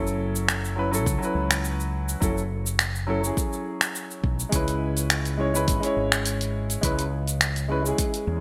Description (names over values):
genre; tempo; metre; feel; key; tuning
sunset chillout; 104 BPM; 4/4; swing 53% on 16ths; unclear; A4 = 440 Hz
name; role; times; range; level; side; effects
clear grand piano; accompaniment; 0.0-8.4 s; F#3 to C#5; -30 LUFS; equal; delay
fretless electric bass; bass; 0.0-8.4 s; F#1 to E2; -30 LUFS; equal; none
deep house drum kit; drums; 0.1-8.2 s; cabasa, finger snaps, hi-hat; -28 LUFS; equal; gated reverb
electronic kick drum; drums; 1.1-8.1 s; none; -30 LUFS; equal; none
room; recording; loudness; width
moderate lush hall reverb, RT60 1.6 s, digital ambience; bright 1980s-style digital production; -25 LUFS; mono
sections
0.0-8.4 A section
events
none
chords
0.0 F#m7; 4.5 C#m7